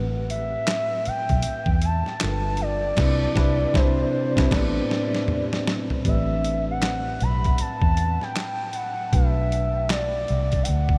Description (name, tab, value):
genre	R&B, neo-soul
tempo	78 BPM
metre	4/4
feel	swing 62% on 16ths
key	A dorian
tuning	A4 = 440 Hz
part	tine electric piano	accompaniment	0.0-11.0 s	A2 to C5	-31 LUFS	equal	overdrive
part	vintage muted fingered electric bass	bass	0.0-11.0 s	G1 to E2	-27 LUFS	equal	none
part	gliding portamento lead	melody	0.3-11.0 s	C5 to B5	-30 LUFS	equal	chorus, analog delay
part	boom bap sampler-style drum kit	drums	0.3-11.0 s	crash cymbal, handclaps, hi-hat, kick drum, snare drum, toms	-28 LUFS	equal	none
room	moderate huge ambient reverb, RT60 8.0 s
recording	dreamy mix soaked in reverb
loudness	-23 LUFS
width	mono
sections	0.0-6.1 A section; 6.1-11.0 B section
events	band accent 3.0-6.1; drum fill 4.5-6.1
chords	0.0 Am9; 2.2 G9; 3.0 Cmaj9; 4.5 Am11; 6.1 Am9; 9.1 Bm7